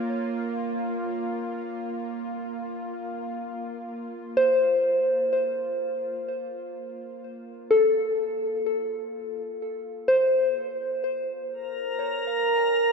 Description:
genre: ambient.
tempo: free time.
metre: none.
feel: none.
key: Bb minor.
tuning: A4 = 440 Hz.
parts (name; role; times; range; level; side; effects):
soft synth bell; arpeggios; 0.0-12.9 s; A4 to Ab5; -24 LUFS; left 1 dB; chorus, ping-pong delay.
bowed-like drone; drone; 0.0-11.6 s; Bb3 to F4; -34 LUFS; right 1 dB; built-in reverb.
drifting glass-harmonics texture; texture; 11.7-12.9 s; Bb4 to Bb5; -23 LUFS; right 2 dB; chorus, built-in reverb.
room: wet cathedral reverb, RT60 5.8 s.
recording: none.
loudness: -24 LUFS.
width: side -4 dB against mid.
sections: 0.0-11.5 A section; 11.5-12.9 B section.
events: fade-out on synth drone 0.0-11.5.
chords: 0.0 Bbm; 3.9 F/Bb; 11.5 Bbm9.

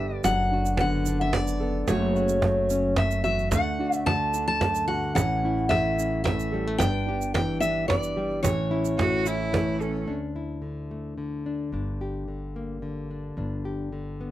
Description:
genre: acoustic folk duo or small band.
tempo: 110 BPM.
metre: 3/4.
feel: straight.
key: D major.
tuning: A4 = 439 Hz.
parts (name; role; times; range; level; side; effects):
picked steel-string acoustic guitar; melody; 0.0-9.8 s; C#5 to A5; -27 LUFS; left 1 dB; none.
nylon-string guitar; accompaniment; 0.0-14.3 s; D2 to G4; -30 LUFS; left 2 dB; none.
warm upright piano; arpeggios; 0.0-10.1 s; E3 to A4; -31 LUFS; right 4 dB; none.
upright bass; bass; 0.0-14.3 s; F#1 to D2; -32 LUFS; equal; none.
cajon; percussion; 0.1-10.0 s; none; -27 LUFS; right 2 dB; none.
egg shaker; percussion; 0.2-9.9 s; none; -38 LUFS; right 16 dB; none.
clear cello; second line; 9.0-10.1 s; C#4 to F#4; -29 LUFS; right 1 dB; none.
room: light reverb.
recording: dry, close 1970s-style studio recording.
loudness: -24 LUFS.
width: side -14 dB against mid.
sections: 0.0-10.1 A section; 10.1-14.3 B section.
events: none.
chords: 0.3 D6/F#; 1.9 F#m; 3.5 D; 5.2 A; 6.8 Em7/G; 8.4 A; 10.1 Dsus2; 11.7 Gm; 13.4 G5.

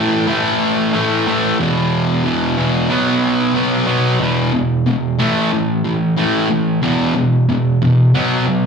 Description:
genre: rock.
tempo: 92 BPM.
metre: 4/4.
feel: straight.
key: unclear.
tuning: A4 = 440 Hz.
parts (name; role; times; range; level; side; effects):
fuzz guitar; solo; 0.0-8.7 s; E2 to B3; -14 LUFS; equal; distortion, slapback echo.
room: wet club ambience, RT60 0.5 s.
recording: live gig heard through the venue's PA, club reverb.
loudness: -14 LUFS.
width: side -6 dB against mid.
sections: 0.0-4.2 A section; 4.2-8.7 B section.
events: none.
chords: 0.0 A5; 1.6 E5; 2.9 B5; 4.2 E5; 5.2 A5; 6.8 E5; 8.1 B5.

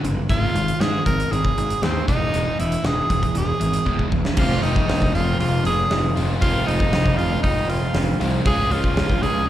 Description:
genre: classic rock.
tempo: 118 BPM.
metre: 4/4.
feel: straight.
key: unclear.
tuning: A4 = 440 Hz.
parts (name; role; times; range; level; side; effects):
overdriven electric guitar; riff; 0.0-9.5 s; E2 to F4; -26 LUFS; equal; slapback echo.
fuzz picked electric bass; bass; 0.0-9.4 s; E1 to Ab2; -24 LUFS; equal; overdrive.
huge arena drum kit; drums; 0.0-9.3 s; crash cymbal, hi-hat, kick drum, snare drum; -23 LUFS; equal; none.
edgy tenor saxophone; melody; 0.3-9.5 s; C4 to Bb4; -24 LUFS; right 1 dB; slapback echo.
dark grand piano; accompaniment; 4.4-9.4 s; C4 to Eb5; -34 LUFS; equal; none.
raw garage guitar; riff; 4.4-9.5 s; F2 to Db4; -30 LUFS; left 2 dB; none.
room: little or no reverb.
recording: live gig heard through the venue's PA, recital hall reverb.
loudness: -18 LUFS.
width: side -12 dB against mid.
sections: 0.0-4.4 A section; 4.4-9.5 B section.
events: drum fill 3.9-4.4.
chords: 0.3 Ab5; 2.1 E; 4.4 Fm; 8.5 Db.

